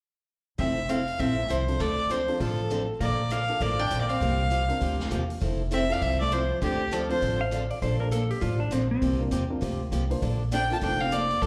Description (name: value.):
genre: country, western swing.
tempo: 200 BPM.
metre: 4/4.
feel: swing 61% on 8ths.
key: F major.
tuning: A4 = 440 Hz.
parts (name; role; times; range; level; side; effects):
rich fiddle; melody; 0.6-7.4, 10.5-11.5 s; G4 to A5; -31 LUFS; equal; slapback echo.
archtop guitar, miked and amplified; second line; 0.6-7.4, 10.5-11.5 s; D3 to F4; -35 LUFS; equal; slapback echo.
picked acoustic archtop guitar; accompaniment; 0.6-11.5 s; C3 to A4; -36 LUFS; equal; slapback echo.
upright bass; bass; 0.6-11.5 s; F1 to E2; -31 LUFS; equal; none.
swinging big-band drum kit; drums; 0.6-11.5 s; hi-hat, kick drum, snare drum; -41 LUFS; equal; none.
dark upright piano; accompaniment; 1.7-11.1 s; Bb3 to C5; -38 LUFS; equal; slapback echo.
clean lap steel guitar; second line; 7.4-9.2 s; C4 to F5; -32 LUFS; equal; slapback echo.
room: light reverb, small room ambience.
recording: live gig heard through the venue's PA, club reverb.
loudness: -27 LUFS.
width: mono.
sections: 0.6-5.4 A section; 5.4-11.5 B section.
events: none.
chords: 0.6 Fmaj7; 1.8 Dm7; 3.0 Bbmaj7; 4.2 C9sus4; 5.4 Fmaj7; 6.6 Dm7; 7.8 Bbmaj7; 9.0 C9sus4; 10.2 Bbmaj7.